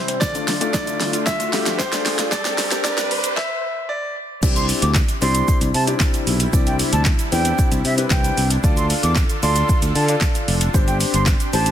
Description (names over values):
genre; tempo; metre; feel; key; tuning
dance-pop; 114 BPM; 4/4; straight; C major; A4 = 440 Hz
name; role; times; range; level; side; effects
clear concert grand piano; melody; 0.0-4.1 s; C5 to E5; -26 LUFS; equal; tape echo
soft supersaw; sustained chords; 0.0-11.7 s; G2 to A4; -28 LUFS; equal; sidechain pumping
soft round pluck; arpeggios; 0.0-3.2 s; D3 to F5; -33 LUFS; right 1 dB; chorus, sidechain pumping, tape echo
riser; sound effects; 0.0-3.4 s; none; -27 LUFS; right 1 dB; none
deep house drum kit; drums; 0.1-11.7 s; crash cymbal, handclaps, hi-hat, kick drum, shaker, snare drum; -20 LUFS; equal; none
egg shaker; percussion; 0.2-11.7 s; none; -36 LUFS; right 13 dB; none
warm concert grand piano; accompaniment; 0.3-11.7 s; A3 to D5; -26 LUFS; left 4 dB; sidechain pumping
sustaining fretless electric bass; bass; 4.4-11.7 s; F1 to D3; -20 LUFS; equal; sidechain pumping
concert flute; melody; 4.6-11.7 s; E5 to D6; -25 LUFS; right 2 dB; sidechain pumping, tape echo
room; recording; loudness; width
light reverb, small room ambience; dense, heavily limited modern master, high-pass filter; -16 LUFS; side -10 dB against mid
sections
0.0-4.4 A section; 4.4-11.7 B section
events
build-up 0.0-4.4; drum fill 0.0-3.4; riser 0.0-4.4; stop 3.4-4.4; drop 4.4-11.7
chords
0.2 Dm; 2.3 Gsus4; 4.4 Cadd9; 8.6 Dm; 10.7 Gsus4